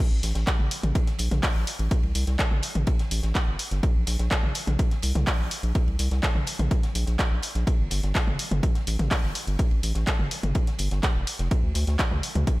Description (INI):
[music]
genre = melodic techno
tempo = 125 BPM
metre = 4/4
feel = straight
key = unclear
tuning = A4 = 440 Hz
[part]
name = round analog bass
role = bass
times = 0.1-12.4 s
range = F1 to D2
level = -25 LUFS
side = equal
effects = sidechain pumping
[part]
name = compact cocktail drum kit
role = drums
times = 0.2-12.6 s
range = hi-hat, ride cymbal, snare drum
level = -40 LUFS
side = right 1 dB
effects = high-pass filter on cymbals, high-pass filter on hats, high-pass filter on snare, high-pass filter on room
[part]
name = punchy analog drum machine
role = drums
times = 0.2-12.6 s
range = handclaps, hi-hat, toms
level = -29 LUFS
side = equal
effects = none
[part]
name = electronic kick drum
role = drums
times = 0.5-12.6 s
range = none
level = -24 LUFS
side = equal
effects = none
[sound]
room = small room ambience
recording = none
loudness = -22 LUFS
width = side -20 dB against mid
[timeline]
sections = 0.0-12.6 A section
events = none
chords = none